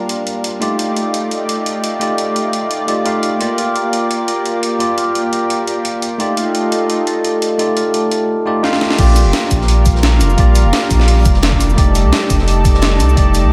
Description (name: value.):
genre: liquid drum and bass.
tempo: 172 BPM.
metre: 4/4.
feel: swing 53% on 16ths.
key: Bb major.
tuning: A4 = 440 Hz.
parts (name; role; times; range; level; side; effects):
bell-like tine electric piano; accompaniment; 0.0-13.5 s; A3 to F5; -22 LUFS; equal; analog delay.
lush unison pad; sustained chords; 0.0-13.5 s; G3 to D5; -23 LUFS; equal; chorus.
breakbeat sampler-style drum kit; drums; 0.1-13.4 s; cabasa, crash cymbal, hi-hat, snare drum; -23 LUFS; equal; none.
vibraphone with medium hard mallets; arpeggios; 3.4-9.0 s; F4 to Bb5; -23 LUFS; equal; analog delay.
saturated sub bass; bass; 9.0-13.5 s; F1 to C2; -15 LUFS; equal; none.
crunchy breakbeat drum kit; drums; 9.0-13.4 s; hi-hat, snare drum; -30 LUFS; equal; none.
electronic kick drum; drums; 9.0-13.2 s; none; -17 LUFS; equal; none.
room: moderate church reverb, RT60 2.5 s.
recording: dreamy mix soaked in reverb.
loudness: -15 LUFS.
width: mono.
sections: 0.0-9.0 A section; 9.0-13.5 B section.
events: drum fill 8.6-9.0; drop 9.0-13.5.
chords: 0.0 Bb6; 0.6 F13; 3.4 Bb6; 6.2 F13; 9.0 Bb6; 11.8 F13.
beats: 0.27 | 0.61 0.96 1.31 1.66 | 2.01 2.36 2.71 3.06 | 3.41 3.75 4.10 4.45 | 4.80 5.15 5.50 5.85 | 6.20 6.54 6.89 7.24 | 7.59 7.94 8.29 8.64 | 8.99 9.34 9.69 10.03 | 10.38 10.73 11.08 11.43 | 11.78 12.13 12.47 12.82 | 13.17 13.52.